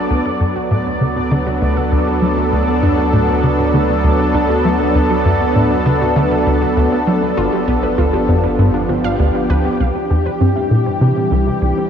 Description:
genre	ambient, sequencer-driven space music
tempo	99 BPM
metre	4/4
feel	straight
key	unclear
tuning	A4 = 441 Hz
part	lush unison pad	sustained chords	0.0-11.9 s	E3 to A4	-16 LUFS	equal	chorus, shimmer reverb
part	wide unison pluck	arpeggios	0.0-11.9 s	A3 to F5	-23 LUFS	right 2 dB	auto-pan, analog delay, shimmer reverb
part	warm sub bass	bass	0.0-9.8 s	G1 to D2	-23 LUFS	equal	none
part	bubbling stepped-filter texture	texture	0.0-9.8 s	D5	-28 LUFS	right 2 dB	chorus, built-in reverb, shimmer reverb
part	tight sequencer bass	riff	0.1-11.7 s	G1 to F#3	-17 LUFS	equal	ensemble chorus, vintage 12-bit sampler grit, analog delay
room	wet lush hall reverb, RT60 2.6 s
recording	dreamy mix soaked in reverb, cassette tape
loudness	-13 LUFS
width	side -8 dB against mid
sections	0.0-9.8 A section; 9.8-11.9 B section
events	filter sweep on analog synth bass 0.0-9.8; filter sweep on synth arpeggio sound 9.8-11.9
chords	0.1 D6; 7.4 G7; 9.8 C

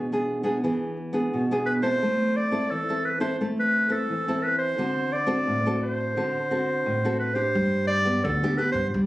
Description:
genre	samba and choro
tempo	87 BPM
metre	4/4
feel	straight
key	G major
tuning	A4 = 440 Hz
part	nylon-string guitar	accompaniment	0.0-9.1 s	A2 to A4	-26 LUFS	equal	none
part	clear clarinet	melody	1.7-8.9 s	A4 to D5	-25 LUFS	equal	none
part	upright bass	bass	7.6-9.1 s	D2 to G3	-28 LUFS	equal	none
room	moderate large studio reverb, RT60 0.8 s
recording	recorded on a phone in the room, club reverb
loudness	-23 LUFS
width	side -17 dB against mid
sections	0.0-7.6 A section; 7.6-9.1 B section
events	none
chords	0.0 E7; 2.0 Am; 4.8 D7; 7.6 G

